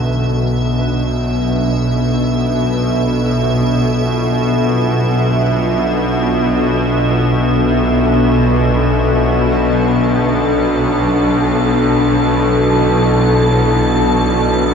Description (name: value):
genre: dark ambient drone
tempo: free time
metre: none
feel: none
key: unclear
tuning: A4 = 437 Hz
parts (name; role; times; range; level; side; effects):
- dark analog pad; sustained chords; 0.0-14.7 s; B2 to A4; -19 LUFS; left 1 dB; chorus, phaser, shimmer reverb
- bright baby grand piano; arpeggios; 0.0-6.0 s; E2 to B4; -37 LUFS; right 1 dB; none
- bowed-like drone; drone; 0.0-14.7 s; B1 to B2; -14 LUFS; equal; built-in reverb
- icy glass pad; texture; 0.0-14.7 s; E5 to A5; -23 LUFS; right 2 dB; chorus, built-in reverb, shimmer reverb
room: wet cathedral reverb, RT60 6.3 s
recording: lossy compression artefacts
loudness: -12 LUFS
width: side -6 dB against mid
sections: 0.0-14.7 A section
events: fade-in on analog synth pad 0.0-14.7; fade-in on ambient pad 0.0-14.7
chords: 0.1 Dm; 9.3 Bm7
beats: free time